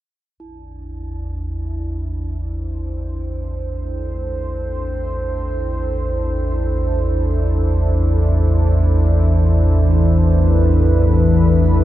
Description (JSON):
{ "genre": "ambient", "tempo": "free time", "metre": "none", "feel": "none", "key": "A minor", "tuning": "A4 = 439 Hz", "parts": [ { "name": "dark analog pad", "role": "sustained chords", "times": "0.4-11.8 s", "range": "D4 to C5", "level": "-23 LUFS", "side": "right 1 dB", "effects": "chorus, shimmer reverb" }, { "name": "deep rumbling drone", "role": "drone", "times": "0.4-11.8 s", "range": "A1 to E2", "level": "-16 LUFS", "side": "equal", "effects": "built-in reverb, lush chorus" }, { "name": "bronze singing bowl", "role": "texture", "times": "0.4-11.8 s", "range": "E4", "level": "-42 LUFS", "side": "right 1 dB", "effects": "shimmer reverb" } ], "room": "wet cathedral reverb, RT60 5.7 s", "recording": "dark, warm production", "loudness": "-16 LUFS", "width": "side -14 dB against mid", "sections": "0.4-11.8 A section", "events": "fade-in on analog synth pad 0.4-11.8; fade-in on singing bowl 0.4-11.8", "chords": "0.4 A5" }